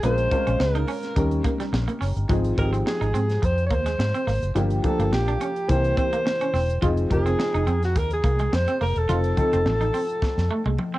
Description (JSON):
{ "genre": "polished 1980s jazz-funk pop", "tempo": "106 BPM", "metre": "4/4", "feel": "swing 54% on 16ths", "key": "unclear", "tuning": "A4 = 441 Hz", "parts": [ { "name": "warm alto saxophone", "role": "melody", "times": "0.0-10.8 s", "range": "Gb4 to Db5", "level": "-26 LUFS", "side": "equal", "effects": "cassette tape, plate reverb" }, { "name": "dark baby grand piano", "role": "accompaniment", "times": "0.0-11.0 s", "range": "E3 to Bb4", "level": "-28 LUFS", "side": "left 2 dB", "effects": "lush chorus" }, { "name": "electric guitar at the edge of break-up", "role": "riff", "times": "0.0-11.0 s", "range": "G3 to F4", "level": "-30 LUFS", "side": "right 4 dB", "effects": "lush chorus" }, { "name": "vintage muted fingered electric bass", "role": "bass", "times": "0.0-10.8 s", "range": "E1 to Ab2", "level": "-24 LUFS", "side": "equal", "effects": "none" }, { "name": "crisp fusion drum kit", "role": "drums", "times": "0.0-10.9 s", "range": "hi-hat, kick drum, snare drum, toms", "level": "-28 LUFS", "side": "equal", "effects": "cassette tape" } ], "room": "light reverb", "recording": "home recording on cassette", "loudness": "-20 LUFS", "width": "side -17 dB against mid", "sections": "0.0-11.0 A section", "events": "drum fill 10.2-11.0", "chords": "0.0 Bbm7; 1.2 Eb7; 2.3 Ab6; 4.6 Gm7; 5.7 C7; 6.8 Fm7; 9.1 F7" }